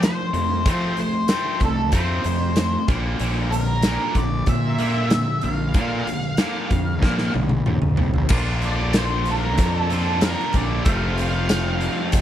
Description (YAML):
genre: classic rock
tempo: 94 BPM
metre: 4/4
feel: straight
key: unclear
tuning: A4 = 440 Hz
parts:
  - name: octave-fuzz lead guitar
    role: melody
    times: 0.0-12.1 s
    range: A4 to F5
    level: -26 LUFS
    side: equal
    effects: wah, distortion, slapback echo
  - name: distorted electric guitar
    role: riff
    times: 0.0-12.2 s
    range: F2 to F4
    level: -25 LUFS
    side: equal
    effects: overdrive
  - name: fuzz fingered electric bass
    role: bass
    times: 0.0-12.2 s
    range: F1 to F3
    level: -24 LUFS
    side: equal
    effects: overdrive
  - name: huge arena drum kit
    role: drums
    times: 0.0-12.2 s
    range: crash cymbal, hi-hat, kick drum, snare drum, tambourine, toms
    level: -23 LUFS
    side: equal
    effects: none
  - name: tambourine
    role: percussion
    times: 8.6-12.2 s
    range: none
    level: -42 LUFS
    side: right 17 dB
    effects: none
room: little or no reverb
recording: none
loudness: -19 LUFS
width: side -11 dB against mid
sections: 0.0-8.3 A section; 8.3-12.2 B section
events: drum fill 7.0-8.3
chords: 0.0 F; 2.9 Bb; 10.9 F